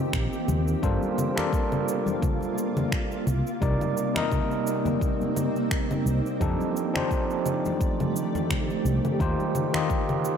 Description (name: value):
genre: sunset chillout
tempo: 86 BPM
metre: 4/4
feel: swing 55% on 16ths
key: unclear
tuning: A4 = 440 Hz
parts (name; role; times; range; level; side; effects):
- overdriven tine electric piano; accompaniment; 0.0-10.4 s; C3 to Eb5; -28 LUFS; right 1 dB; auto-pan, digital delay
- shimmering ambient pad; sustained chords; 0.0-10.4 s; C3 to D5; -30 LUFS; equal; chorus, built-in reverb
- mellow fretless electric bass; bass; 0.1-9.3 s; G1 to F2; -26 LUFS; equal; none
- electronic finger snaps, cabasa and congas; drums; 0.1-10.4 s; none; -32 LUFS; left 2 dB; small room reverb
- electronic kick drum; drums; 0.1-10.1 s; none; -28 LUFS; equal; small room reverb
- congas; percussion; 0.5-9.9 s; none; -36 LUFS; left 3 dB; none
room: light reverb, digital ambience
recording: none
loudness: -23 LUFS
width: side -7 dB against mid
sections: 0.0-10.4 A section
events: none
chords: 0.0 Eb6; 0.8 Gm11; 3.3 Cm9; 6.4 F13; 9.2 Eb6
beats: 0.13 | 0.83 1.53 2.23 2.92 | 3.62 4.32 5.02 5.71 | 6.41 7.11 7.81 8.51 | 9.20 9.90